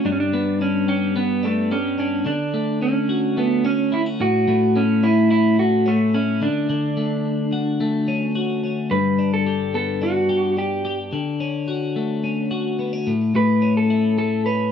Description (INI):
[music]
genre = indie pop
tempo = 108 BPM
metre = 4/4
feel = straight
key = D major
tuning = A4 = 440 Hz
[part]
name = electric guitar through a small old amp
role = melody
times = 0.0-14.7 s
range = A3 to B4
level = -21 LUFS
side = right 4 dB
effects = none
[part]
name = twelve-string electric guitar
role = arpeggios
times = 0.0-14.7 s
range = G2 to G4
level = -20 LUFS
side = left 3 dB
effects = spring reverb
[sound]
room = moderate small room reverb, RT60 0.5 s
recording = rough home demo mix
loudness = -18 LUFS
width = side -8 dB against mid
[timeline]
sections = 0.0-8.9 A section; 8.9-14.7 B section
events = none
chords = 0.1 G; 2.3 Dmaj7; 4.2 A; 6.4 Dmaj7; 8.9 G; 11.1 Dmaj7; 13.1 A